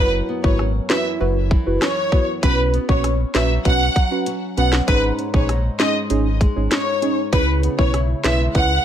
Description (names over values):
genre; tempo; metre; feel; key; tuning
dancehall; 98 BPM; 4/4; straight; C# dorian; A4 = 441 Hz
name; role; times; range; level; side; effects
warm symphonic violin section; melody; 0.0-8.8 s; B4 to F#5; -22 LUFS; left 1 dB; ping-pong delay
deep mellow chord stab; accompaniment; 0.0-8.7 s; C#4 to B4; -24 LUFS; right 2 dB; chorus
nylon-string guitar; arpeggios; 0.0-8.8 s; F#2 to E4; -28 LUFS; equal; none
sub bass with octave; bass; 0.0-8.8 s; F#1 to C#2; -20 LUFS; equal; none
island pop drum kit; drums; 0.4-8.7 s; hi-hat, kick drum, rim click, snare drum; -19 LUFS; equal; vintage 12-bit sampler grit
room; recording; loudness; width
digital ambience; none; -16 LUFS; side -10 dB against mid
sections
0.0-8.8 A section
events
break 0.0-2.4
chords
0.0 F#7sus4; 2.4 Bsus2; 4.9 G#sus4; 7.3 C#m7